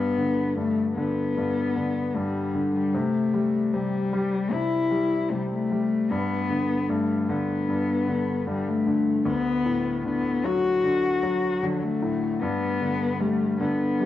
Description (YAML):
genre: pop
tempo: 76 BPM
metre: 4/4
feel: straight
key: G major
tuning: A4 = 440 Hz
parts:
  - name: dark cello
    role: melody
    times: 0.0-14.1 s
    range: F#3 to F#4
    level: -24 LUFS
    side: left 4 dB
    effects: cassette tape
  - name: clear concert grand piano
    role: accompaniment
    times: 0.0-14.1 s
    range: D2 to G3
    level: -27 LUFS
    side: equal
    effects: cassette tape
room: wet studio reverb, RT60 0.6 s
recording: home recording on cassette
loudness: -22 LUFS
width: side -12 dB against mid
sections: 0.0-14.1 A section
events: none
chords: 0.0 G; 2.9 C; 6.1 G; 9.3 D6; 12.4 G